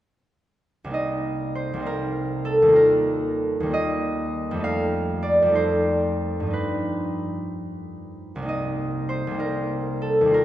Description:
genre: classical, solo harp piece.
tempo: 59-69 BPM (dotted quarters).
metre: 6/8.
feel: rubato.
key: C dorian.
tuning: A4 = 441 Hz.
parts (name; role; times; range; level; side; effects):
concert harp; solo; 0.8-10.4 s; C2 to F5; -21 LUFS; equal; none.
room: wet church reverb, RT60 3.1 s.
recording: none.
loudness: -21 LUFS.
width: side -13 dB against mid.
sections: 0.9-10.4 A section.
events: none.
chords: 0.9 Cm7; 2.8 Ebadd9; 4.6 F13; 6.5 Gaug7; 8.5 Cm7.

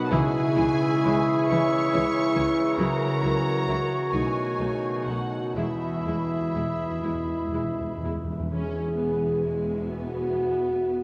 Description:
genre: classical, slow romantic movement for symphony orchestra.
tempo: 39-48 BPM (dotted quarters).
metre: 6/8.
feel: rubato.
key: E major.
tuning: A4 = 440 Hz.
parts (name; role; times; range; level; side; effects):
rich symphonic violin section; melody; 0.0-11.0 s; E5 to C#6; -40 LUFS; equal; none.
clear clarinet; second line; 0.0-8.1 s; D#4 to E4; -36 LUFS; equal; none.
dark symphonic violin section; second line; 0.0-11.0 s; E4 to E5; -39 LUFS; equal; none.
large flute ensemble; second line; 0.0-8.1 s; B5 to D#6; -40 LUFS; equal; none.
warm oboe; second line; 0.0-8.1 s; F#4 to B4; -40 LUFS; equal; none.
clear trombone section; sustained chords; 0.0-8.2 s; F#2 to E3; -35 LUFS; equal; none.
mellow French horn section; sustained chords; 0.0-11.0 s; F#3 to G#4; -31 LUFS; equal; none.
concert harp; arpeggios; 0.0-11.0 s; B2 to E5; -34 LUFS; equal; none.
mellow trumpet section; stabs; 0.0-8.1 s; B4 to E5; -36 LUFS; equal; none.
rich symphonic viola section; accompaniment; 0.1-11.0 s; E3 to E4; -36 LUFS; equal; none.
clear symphonic double bass section; bass; 0.1-11.0 s; E1 to C#2; -39 LUFS; equal; none.
warm symphonic cello section; bass; 0.1-11.0 s; E2 to C#3; -39 LUFS; equal; none.
timpani; percussion; 5.6-8.5 s; E2; -38 LUFS; equal; none.
room: wet cathedral reverb, RT60 5.9 s.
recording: in a vast, echoing space.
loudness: -26 LUFS.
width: mono.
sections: 0.0-8.5 A section; 8.5-11.0 B section.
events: timpani fill 5.6-8.5.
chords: 0.1 C#m; 2.8 F#7/C#; 4.1 B9; 5.6 E.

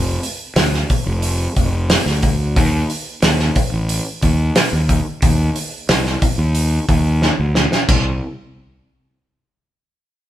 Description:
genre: quiet-loud alternative rock.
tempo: 90 BPM.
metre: 4/4.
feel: straight.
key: unclear.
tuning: A4 = 440 Hz.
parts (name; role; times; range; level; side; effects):
fuzz fingered electric bass; bass; 0.0-8.2 s; F1 to Eb2; -18 LUFS; equal; overdrive.
loose indie drum kit; drums; 0.2-8.0 s; crash cymbal, hi-hat, kick drum, snare drum; -17 LUFS; equal; none.
room: light reverb.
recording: band playing live in one room.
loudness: -15 LUFS.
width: side -12 dB against mid.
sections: 0.0-7.9 A section; 7.9-10.3 B section.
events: drum fill 7.2-7.9.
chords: none.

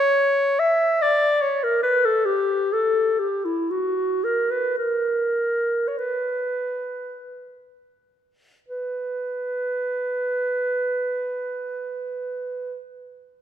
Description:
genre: classical, free, expressive piece for unaccompanied clarinet.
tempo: 35-72 BPM.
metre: 3/4.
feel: rubato.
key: B minor.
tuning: A4 = 441 Hz.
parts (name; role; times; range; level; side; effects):
warm clarinet; solo; 0.0-12.8 s; E4 to E5; -21 LUFS; equal; none.
room: moderate concert hall reverb, RT60 2.4 s.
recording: minimal, uncompressed stereo recording.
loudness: -21 LUFS.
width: side -9 dB against mid.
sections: 0.0-8.7 A section; 8.7-12.3 B section.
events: slowing down 0.6-8.7.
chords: none.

